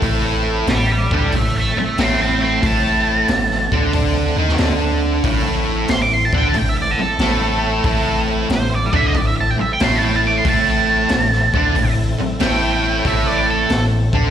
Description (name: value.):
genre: blues rock power trio and southern rock.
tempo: 92 BPM.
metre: 4/4.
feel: swing 67% on 8ths.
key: A minor.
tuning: A4 = 440 Hz.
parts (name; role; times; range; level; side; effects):
overdriven tonewheel organ; sustained chords; 0.0-14.3 s; A3 to F4; -30 LUFS; right 4 dB; slow rotary speaker, chorus vibrato.
thick fuzz guitar; riff; 0.0-14.3 s; A2 to D#4; -19 LUFS; equal; distortion, slapback echo.
punchy sub bass; bass; 0.0-14.3 s; A1 to D#2; -22 LUFS; equal; none.
raw garage drum kit; drums; 0.0-14.2 s; hi-hat, kick drum, snare drum; -22 LUFS; equal; none.
octave-fuzz lead guitar; melody; 0.7-13.8 s; A4 to D6; -19 LUFS; right 2 dB; wah, distortion, slapback echo.
room: little or no reverb.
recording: live gig heard through the venue's PA, recital hall reverb.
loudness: -14 LUFS.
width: side -9 dB against mid.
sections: 0.0-14.3 A section.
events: lead electric guitar solo 0.0-14.3.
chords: 0.0 Am.